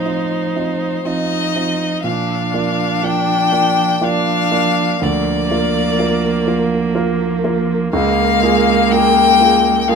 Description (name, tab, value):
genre	classical, slow romantic movement for piano quartet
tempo	61 BPM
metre	3/4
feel	rubato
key	Bb major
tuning	A4 = 440 Hz
part	warm violin	melody	0.0-10.0 s	C5 to G5	-17 LUFS	left 9 dB	none
part	warm cello	second line	0.0-10.0 s	F3 to Ab3	-20 LUFS	right 8 dB	none
part	warm grand piano	accompaniment	0.0-10.0 s	Db2 to Eb5	-20 LUFS	right 2 dB	none
part	warm viola	accompaniment	0.0-10.0 s	Bb3 to Eb4	-22 LUFS	right 4 dB	none
room	moderate large studio reverb, RT60 1.3 s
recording	close, detailed microphones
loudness	-13 LUFS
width	side -5 dB against mid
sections	0.0-10.0 A section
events	none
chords	0.0 F7/A; 2.1 Bb; 5.0 Bb/D; 7.9 Bbm7/Db